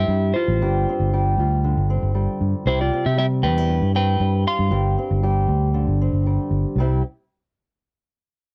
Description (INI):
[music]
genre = highlife guitar band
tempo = 117 BPM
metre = 4/4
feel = straight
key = C major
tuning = A4 = 435 Hz
[part]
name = clean electric guitar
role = melody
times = 0.0-6.2 s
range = E4 to C6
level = -26 LUFS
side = equal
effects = none
[part]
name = fingerpicked old ladder-braced acoustic guitar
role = accompaniment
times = 0.0-7.0 s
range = G2 to G4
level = -28 LUFS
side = equal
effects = none
[part]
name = fingered electric bass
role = bass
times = 0.0-7.0 s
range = G1 to C3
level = -22 LUFS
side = equal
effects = none
[sound]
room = little or no reverb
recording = dry, close 1970s-style studio recording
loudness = -21 LUFS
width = mono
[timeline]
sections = 0.0-6.8 A section; 6.8-8.5 B section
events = none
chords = 0.0 C; 0.6 G7sus4; 2.7 C; 4.7 G7sus4; 6.8 C